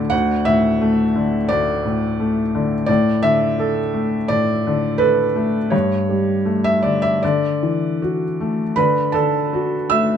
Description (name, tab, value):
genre	neoclassical minimalist piano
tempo	76-88 BPM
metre	4/4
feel	rubato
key	D major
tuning	A4 = 440 Hz
part	felt-muted upright piano	solo	0.0-10.2 s	D2 to E6	-16 LUFS	equal	none
room	light reverb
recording	minimal, uncompressed stereo recording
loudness	-16 LUFS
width	side -8 dB against mid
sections	0.0-8.8 A section; 8.8-10.2 B section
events	none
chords	0.0 D; 2.9 Asus4; 5.7 Gsus2; 7.2 Dadd9; 8.8 D